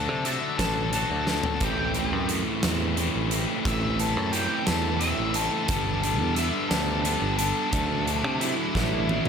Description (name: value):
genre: quiet-loud alternative rock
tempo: 59 BPM (dotted quarters)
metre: 6/8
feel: straight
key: A dorian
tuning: A4 = 440 Hz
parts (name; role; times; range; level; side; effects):
- octave-fuzz lead guitar; melody; 0.0-9.3 s; E4 to E5; -30 LUFS; left 2 dB; distortion
- twangy electric guitar; arpeggios; 0.0-1.6 s; D3 to A4; -34 LUFS; right 4 dB; lush chorus
- distorted electric guitar; riff; 0.0-9.3 s; G2 to E4; -29 LUFS; left 12 dB; distortion
- modern bright picked electric bass; bass; 0.0-9.3 s; G1 to C3; -29 LUFS; right 1 dB; none
- huge arena drum kit; drums; 0.3-9.3 s; hi-hat, kick drum, snare drum, toms; -30 LUFS; right 1 dB; none
- crunchy overdriven guitar; riff; 1.6-9.3 s; G2 to E4; -30 LUFS; right 14 dB; none
room: light reverb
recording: none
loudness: -23 LUFS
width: side -7 dB against mid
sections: 0.0-9.3 A section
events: lead electric guitar solo 0.0-9.3; drum fill 1.3-1.6, 8.8-9.3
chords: 0.0 D; 1.6 Am7; 5.7 G; 7.7 D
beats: 0.59 | 1.61 2.63 | 3.65 4.67 | 5.69 6.71 | 7.73 8.75